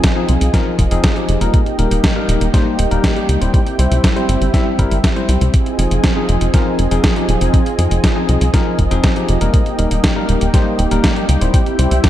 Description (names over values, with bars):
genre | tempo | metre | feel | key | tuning
italo disco | 120 BPM | 4/4 | straight | F minor | A4 = 439 Hz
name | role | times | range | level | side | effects
warm analog pad | sustained chords | 0.0-12.1 s | Bb3 to Ab5 | -21 LUFS | right 2 dB | chorus
bell-like tine electric piano | stabs | 0.0-12.1 s | F3 to E5 | -20 LUFS | left 4 dB | vintage 12-bit sampler grit, tape echo
clean 12-bit digital drum machine | drums | 0.0-12.1 s | hi-hat, snare drum | -20 LUFS | equal | none
electronic kick drum | drums | 0.0-12.1 s | none | -15 LUFS | equal | none
tight sequencer bass | bass | 0.3-12.0 s | Eb1 to F2 | -16 LUFS | equal | none
room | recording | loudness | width
light reverb, digital ambience | dark, warm production | -12 LUFS | side -12 dB against mid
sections
0.0-12.1 A section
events
none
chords
0.0 Fm7; 1.5 Eb; 3.5 C; 5.5 Fm7; 9.5 Eb; 11.5 C